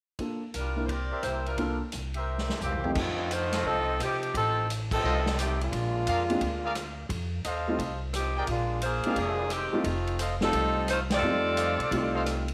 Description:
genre	jazz, big band swing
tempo	174 BPM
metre	4/4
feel	swing 65% on 8ths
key	F mixolydian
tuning	A4 = 440 Hz
part	warm grand piano	accompaniment	0.2-3.0, 6.3-12.4 s	F2 to Bb4	-34 LUFS	equal	none
part	swinging big-band drum kit	drums	0.2-12.5 s	crash cymbal, hi-hat, kick drum, ride cymbal, rim click, snare drum, toms	-38 LUFS	equal	none
part	upright bass	bass	0.5-12.5 s	F1 to C3	-35 LUFS	equal	none
part	clear saxophone section	melody	0.6-12.5 s	Eb3 to D5	-32 LUFS	equal	none
part	warm trumpet section	stabs	1.1-12.2 s	F4 to G5	-37 LUFS	equal	none
room	light reverb, small room reverb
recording	none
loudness	-29 LUFS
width	mono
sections	0.2-3.0 A section; 3.0-12.5 B section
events	drum fill 2.3-3.0; band accent 4.9, 11.1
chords	0.2 Gm7; 0.9 C7; 1.6 Gm7; 2.3 C7; 3.0 F7; 5.7 Bb7; 7.1 F7; 8.5 Bb7; 9.9 F7

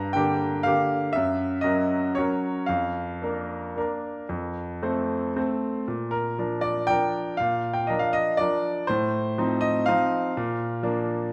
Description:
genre	classical, piano waltz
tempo	109-130 BPM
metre	3/4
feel	rubato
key	Bb major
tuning	A4 = 440 Hz
part	bright grand piano	solo	0.0-11.3 s	F2 to Bb5	-26 LUFS	equal	none
room	wet recital hall reverb, RT60 1.5 s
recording	none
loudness	-26 LUFS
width	mono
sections	0.0-5.9 A section; 5.9-11.3 B section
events	none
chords	0.0 Gm; 1.1 Gb7; 2.7 Bb/F; 4.3 F; 5.9 Bb; 8.9 F7/A; 10.4 Bb

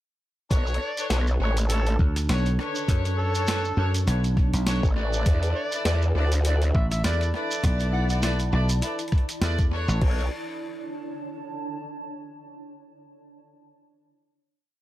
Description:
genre	glitch hop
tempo	101 BPM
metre	4/4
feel	swing 56% on 16ths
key	B minor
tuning	A4 = 442 Hz
part	clear horn section	stabs	0.5-10.2 s	D4 to D5	-31 LUFS	left 1 dB	sidechain pumping, tape echo
part	growl bass	bass	0.5-10.3 s	A1 to E2	-23 LUFS	equal	chorus, tube saturation
part	boom bap sampler-style drum kit	drums	0.5-10.1 s	crash cymbal, hi-hat, rim click, snare drum	-33 LUFS	equal	small room ambience, tape echo
part	electronic kick drum	drums	0.5-10.1 s	none	-22 LUFS	equal	small room ambience
part	shekere	percussion	0.5-10.0 s	none	-38 LUFS	right 3 dB	tape echo
part	granular cloud pad	texture	1.3-12.4 s	D4 to A5	-36 LUFS	right 1 dB	built-in reverb, sidechain pumping
part	overdriven harmonica	melody	0.8-8.2 s	A4 to F#5	-34 LUFS	equal	tape echo
part	dry thumbed slap bass	bass	2.0-10.0 s	A1 to F#2	-24 LUFS	equal	none
room	digital ambience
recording	echo-heavy mix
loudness	-22 LUFS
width	side -15 dB against mid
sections	0.5-10.0 drop; 10.0-12.4 final chord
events	drop 0.5-10.0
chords	0.5 Bm9; 5.3 E7sus4; 10.0 Bm9

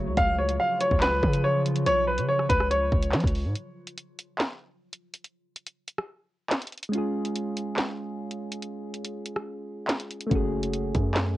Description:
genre	hip hop, drill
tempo	142 BPM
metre	4/4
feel	half-time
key	unclear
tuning	A4 = 441 Hz
part	warbly tape-like pad	sustained chords	0.0-3.5 s	C#3 to F#4	-35 LUFS	right 1 dB	chorus, built-in reverb, cassette tape
part	hard-hitting 808-style bass	bass	0.0-3.5, 10.3-11.4 s	F#1 to E#3	-27 LUFS	equal	none
part	bright upright piano	melody	0.2-3.5 s	B4 to E#5	-24 LUFS	equal	low-pass filter, cassette tape, analog delay
part	drill drum kit	drums	0.2-11.3 s	handclaps, hi-hat, kick drum, rim click, snare drum	-28 LUFS	equal	cassette tape
part	soft electric-piano-like synth keys	accompaniment	6.9-11.4 s	G#3 to G#4	-30 LUFS	equal	chorus, phaser, low-pass filter, cassette tape
room	little or no reverb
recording	home recording on cassette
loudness	-24 LUFS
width	side -16 dB against mid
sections	0.0-3.6 A section; 3.6-11.4 B section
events	break 3.6-10.3; kick muted 9.5-10.3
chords	0.2 C#; 3.6 N.C.; 6.9 C#; 10.3 F#madd9

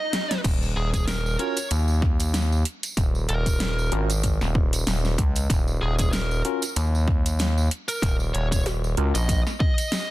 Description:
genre	glitch hop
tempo	95 BPM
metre	4/4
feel	swing 56% on 16ths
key	Eb minor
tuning	A4 = 439 Hz
part	fuzz lead guitar	melody	0.0-10.1 s	Ab4 to Eb5	-31 LUFS	equal	distortion, ping-pong delay
part	pop drum kit	drums	0.1-10.1 s	crash cymbal, hi-hat, snare drum	-29 LUFS	equal	overdrive
part	gritty driven synth bass	bass	0.4-9.4 s	Eb1 to Eb2	-23 LUFS	equal	tube saturation
part	electronic kick drum	drums	0.4-9.7 s	none	-23 LUFS	equal	overdrive
part	tambourine	percussion	0.4-10.1 s	none	-35 LUFS	right 3 dB	none
part	tine electric piano	stabs	1.4-9.1 s	Db4 to Bb4	-30 LUFS	equal	medium stereo tremolo, sidechain pumping, ping-pong delay
room	little or no reverb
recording	dense, heavily limited modern master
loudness	-21 LUFS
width	side -16 dB against mid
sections	0.0-10.1 A section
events	break 0.0-0.4; drum fill 0.0-0.4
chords	0.0 Eb7(no3)

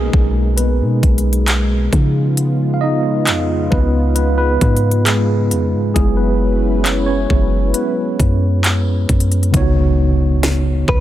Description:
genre	contemporary R&B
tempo	67 BPM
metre	4/4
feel	straight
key	unclear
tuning	A4 = 439 Hz
part	mellow tine electric piano	accompaniment	0.0-11.0 s	C#3 to E#5	-19 LUFS	right 1 dB	medium stereo tremolo
part	warm analog pad	sustained chords	0.0-9.5 s	B2 to B4	-23 LUFS	equal	chorus
part	warm 808-style bass	bass	0.0-11.0 s	F#1 to C#3	-16 LUFS	equal	none
part	downlifter and impact	sound effects	0.0-2.4, 9.5-11.0 s	none	-28 LUFS	equal	none
part	trap drum kit	drums	0.1-11.0 s	handclaps, hi-hat, kick drum, snare drum	-17 LUFS	equal	overdrive
part	direct-recorded clean electric guitar	melody	10.9-11.0 s	B4	-18 LUFS	left 1 dB	phaser
room	little or no reverb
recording	none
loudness	-13 LUFS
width	side -13 dB against mid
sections	0.0-9.5 A section; 9.5-11.0 B section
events	tine electric piano solo 0.0-9.5; impact 9.5-11.0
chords	0.0 B6; 1.9 C#7; 6.0 F#7sus4; 9.5 C#9sus4

